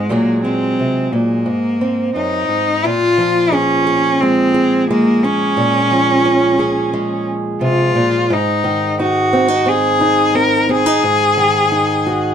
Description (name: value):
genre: folk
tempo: 88 BPM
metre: 4/4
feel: straight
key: Bb minor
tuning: A4 = 439 Hz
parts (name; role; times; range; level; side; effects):
- clear cello; melody; 0.0-12.3 s; Ab3 to Bb4; -14 LUFS; left 1 dB; none
- fingerpicked acoustic archtop guitar; accompaniment; 0.0-12.3 s; Gb2 to Ab4; -17 LUFS; right 1 dB; none
room: moderate studio reverb, RT60 0.5 s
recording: dark, warm production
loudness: -13 LUFS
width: side -8 dB against mid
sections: 0.0-2.8 A section; 2.8-12.3 B section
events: none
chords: 0.1 Gbadd9/Bb; 1.5 Abadd9; 2.8 Bbm7; 8.3 Ab